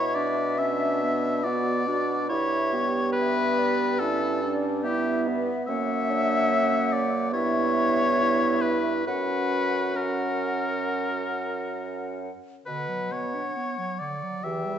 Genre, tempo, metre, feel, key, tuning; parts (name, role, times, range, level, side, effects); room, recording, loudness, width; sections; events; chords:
classical, slow romantic movement for wind quintet; 66-73 BPM; 4/4; rubato; B minor; A4 = 438 Hz
hollow concert flute; melody; 0.0-14.8 s; D5 to G5; -34 LUFS; left 6 dB
warm oboe; second line; 0.0-14.8 s; G4 to E5; -27 LUFS; left 2 dB
warm clarinet; accompaniment; 0.0-14.8 s; D3 to E4; -31 LUFS; right 7 dB
warm bassoon; bass; 0.0-14.8 s; E2 to B2; -31 LUFS; right 1 dB
clear French horn; accompaniment; 0.6-14.8 s; B3 to G4; -30 LUFS; right 2 dB
moderate recital hall reverb, RT60 1.4 s; dark, warm production, nothing above 8.0 kHz; -23 LUFS; side -9 dB against mid
0.0-14.8 A section
0.0 Bm; 2.3 Em/G; 5.7 F#; 7.3 Em/G; 9.1 F#; 12.7 Bm